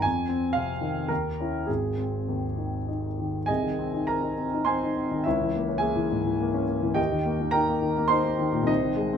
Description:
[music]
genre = classical, romantic character piece for solo piano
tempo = 93-121 BPM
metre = 3/4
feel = rubato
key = Ab major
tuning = A4 = 440 Hz
[part]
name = warm grand piano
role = solo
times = 0.0-9.2 s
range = Ab1 to C6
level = -24 LUFS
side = equal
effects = none
[sound]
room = little or no reverb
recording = close, detailed microphones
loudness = -24 LUFS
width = side -7 dB against mid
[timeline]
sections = 0.0-3.5 A section; 3.5-9.2 B section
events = none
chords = 0.0 Fm7; 1.1 Eb5; 1.7 Ab; 3.5 Ab/C; 5.2 Bbm7b5/Db; 7.0 Eb

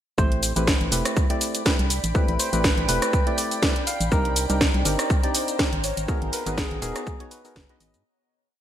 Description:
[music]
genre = deep house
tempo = 122 BPM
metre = 4/4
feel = swing 55% on 16ths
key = unclear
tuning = A4 = 441 Hz
[part]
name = barky tine electric piano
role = melody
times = 0.2-8.0 s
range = G#4 to F5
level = -31 LUFS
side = equal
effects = overdrive, digital delay
[part]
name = percussive organ stab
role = stabs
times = 0.2-8.0 s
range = A3 to D5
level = -29 LUFS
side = equal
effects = chorus, sidechain pumping, ping-pong delay
[part]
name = organ-like FM bass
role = bass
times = 0.2-8.0 s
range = D#1 to G#2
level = -26 LUFS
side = equal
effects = sidechain pumping
[part]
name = electronic kick drum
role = drums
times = 0.2-7.7 s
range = none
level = -23 LUFS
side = equal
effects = overdrive
[part]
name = house drum kit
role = drums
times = 0.2-8.0 s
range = hi-hat, rim click, shaker, snare drum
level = -25 LUFS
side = equal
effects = overdrive, gated reverb
[part]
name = granular cloud pad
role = texture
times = 1.4-8.1 s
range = C#5 to B5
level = -34 LUFS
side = right 1 dB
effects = built-in reverb, sidechain pumping
[part]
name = deep dark ambient pad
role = sustained chords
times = 4.9-8.0 s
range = B3 to Bb5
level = -36 LUFS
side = left 1 dB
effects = chorus, built-in reverb, sidechain pumping
[part]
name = airy dreamy lead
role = melody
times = 5.8-7.9 s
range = B4 to D#5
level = -36 LUFS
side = left 3 dB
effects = chorus, digital delay
[sound]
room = light reverb, digital ambience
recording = bright 1980s-style digital production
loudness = -20 LUFS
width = side -11 dB against mid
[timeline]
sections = 0.2-8.1 drop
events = drop 0.2-8.1; fade-out 5.4-8.1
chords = 0.2 Am7; 4.1 Cm7; 5.8 G#m7

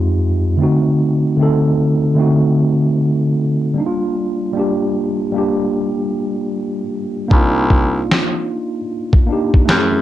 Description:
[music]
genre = lo-fi hip hop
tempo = 76 BPM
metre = 4/4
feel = swing 63% on 16ths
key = unclear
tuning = A4 = 441 Hz
[part]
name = mellow tine electric piano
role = accompaniment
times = 0.0-10.0 s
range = F2 to A4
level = -15 LUFS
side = equal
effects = medium stereo tremolo, cassette tape
[part]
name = warm baritone saxophone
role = bass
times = 7.3-10.0 s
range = C2 to F#2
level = -17 LUFS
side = equal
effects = none
[part]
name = lo-fi sampler-style drum kit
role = drums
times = 7.3-9.9 s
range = kick drum, snare drum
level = -13 LUFS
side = equal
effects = none
[sound]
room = wet small room reverb, RT60 0.5 s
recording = cassette tape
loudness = -14 LUFS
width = side -13 dB against mid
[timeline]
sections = 0.0-7.3 A section; 7.3-10.0 B section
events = hi-hats muted 7.3-10.0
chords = 0.0 Fm7; 0.6 D7b9; 3.8 Gm7; 7.3 Cm11

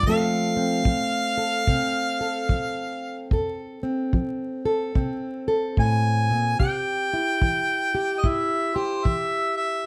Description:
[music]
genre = acoustic country blues, solo or duo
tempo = 73 BPM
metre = 4/4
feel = swing 63% on 8ths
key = F major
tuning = A4 = 441 Hz
[part]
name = warm harmonica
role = melody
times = 0.0-9.9 s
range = C5 to Ab5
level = -27 LUFS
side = equal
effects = slapback echo
[part]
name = fingerpicked plugged-in steel-string acoustic guitar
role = accompaniment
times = 0.0-9.8 s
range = F2 to A4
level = -28 LUFS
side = equal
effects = none
[part]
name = kick drum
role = drums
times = 0.0-9.3 s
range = none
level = -26 LUFS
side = equal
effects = none
[sound]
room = light reverb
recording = close, detailed microphones, vinyl crackle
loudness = -24 LUFS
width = mono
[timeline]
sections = 0.0-9.9 A section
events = none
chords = 0.0 F; 6.6 C

